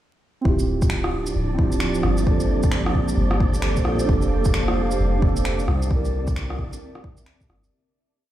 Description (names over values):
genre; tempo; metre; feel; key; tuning
future garage; 132 BPM; 4/4; swing 62% on 16ths; D minor; A4 = 440 Hz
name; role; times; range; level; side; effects
muted felt-like synth keys; accompaniment; 0.4-7.7 s; Bb3 to Bb4; -27 LUFS; right 2 dB; chorus, phaser, sidechain pumping, low-pass filter, dub echo
wind-like tuned noise texture; texture; 0.9-7.7 s; D4 to D5; -34 LUFS; left 1 dB; built-in reverb
granular cloud pad; sustained chords; 1.1-7.7 s; F3 to F5; -28 LUFS; right 2 dB; built-in reverb, sidechain pumping
soft 808-style bass; bass; 0.5-7.7 s; D1 to C2; -24 LUFS; equal; sidechain pumping
electronic kick drum; drums; 0.5-7.5 s; none; -22 LUFS; equal; none
electronic shaker, finger snaps and rim click; drums; 0.6-7.7 s; none; -30 LUFS; equal; none
room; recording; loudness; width
digital ambience; played on a big sound system in a bare room, large studio reverb, vinyl crackle; -19 LUFS; side -13 dB against mid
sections
0.5-7.7 groove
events
fade-out 5.3-7.7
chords
0.5 Dm11; 2.3 Gm11; 4.1 F69; 5.9 C9